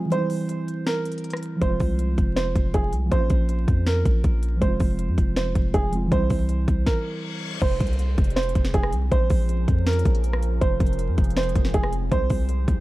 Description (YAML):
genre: hip hop, trap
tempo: 160 BPM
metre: 4/4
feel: half-time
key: F harmonic minor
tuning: A4 = 436 Hz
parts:
  - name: muted felt-like synth keys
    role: accompaniment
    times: 0.0-7.6 s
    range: E3 to F4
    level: -28 LUFS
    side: right 1 dB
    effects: chorus, low-pass filter
  - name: dark baby grand piano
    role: melody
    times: 0.1-12.8 s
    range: Ab4 to C5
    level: -28 LUFS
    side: right 3 dB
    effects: low-pass filter, digital delay
  - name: trap drum kit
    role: drums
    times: 0.1-12.8 s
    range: crash cymbal, hi-hat, kick drum, rim click, snare drum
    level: -23 LUFS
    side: equal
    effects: none
  - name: long sustained 808-style bass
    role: bass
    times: 1.6-12.8 s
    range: F1 to F2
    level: -24 LUFS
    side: equal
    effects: none
  - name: reverse cymbal and downlifter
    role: sound effects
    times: 7.0-10.6 s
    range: none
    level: -38 LUFS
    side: left 3 dB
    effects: none
  - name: deep dark ambient pad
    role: sustained chords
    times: 8.3-12.8 s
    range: E3 to Bb4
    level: -32 LUFS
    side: right 1 dB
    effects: chorus, built-in reverb
room: little or no reverb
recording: dark, warm production, vinyl crackle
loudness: -20 LUFS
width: side -17 dB against mid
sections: 0.0-7.6 A section; 7.6-12.8 B section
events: break 0.0-1.6; stop 6.9-7.6; reverse cymbal 7.0-7.6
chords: 0.1 C; 1.6 Fm; 3.1 Bbm; 4.6 Fm; 6.1 C; 7.6 Fm; 9.1 Bbm; 10.6 Fm; 12.1 C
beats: | 0.12 0.49 0.87 1.24 | 1.62 1.99 2.37 2.74 | 3.12 3.49 3.87 4.24 | 4.62 4.99 5.37 5.74 | 6.12 6.49 6.87 7.24 | 7.62 7.99 8.37 8.74 | 9.12 9.49 9.87 10.24 | 10.62 10.99 11.37 11.74 | 12.12 12.49